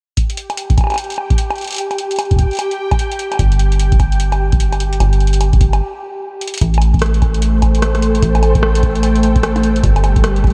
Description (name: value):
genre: IDM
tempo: 149 BPM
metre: 4/4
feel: swing 62% on 16ths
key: A minor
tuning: A4 = 440 Hz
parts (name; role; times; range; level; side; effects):
- electro analog drum machine; drums; 0.2-10.5 s; bongos, hi-hat, rim click; -25 LUFS; equal; analog delay
- electronic kick drum; drums; 0.2-10.5 s; none; -17 LUFS; equal; none
- bubbling stepped-filter texture; texture; 0.6-5.8 s; G4 to G5; -27 LUFS; equal; chorus, built-in reverb
- metallic FM bass; bass; 3.4-10.5 s; G1 to A1; -16 LUFS; equal; none
- soft string machine; sustained chords; 6.8-10.5 s; G3 to G5; -20 LUFS; equal; phaser, ensemble chorus
room: light reverb, digital ambience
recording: none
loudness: -15 LUFS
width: mono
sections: 0.2-6.6 A section; 6.6-10.5 B section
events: stop 5.8-6.6; drum fill 6.4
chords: 0.2 N.C.; 6.6 Am7; 9.8 Em/G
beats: | 0.17 0.57 0.98 1.38 | 1.78 2.19 2.59 2.99 | 3.39 3.80 4.20 4.60 | 5.00 5.41 5.81 6.21 | 6.62 7.02 7.42 7.82 | 8.23 8.63 9.03 9.43 | 9.84 10.24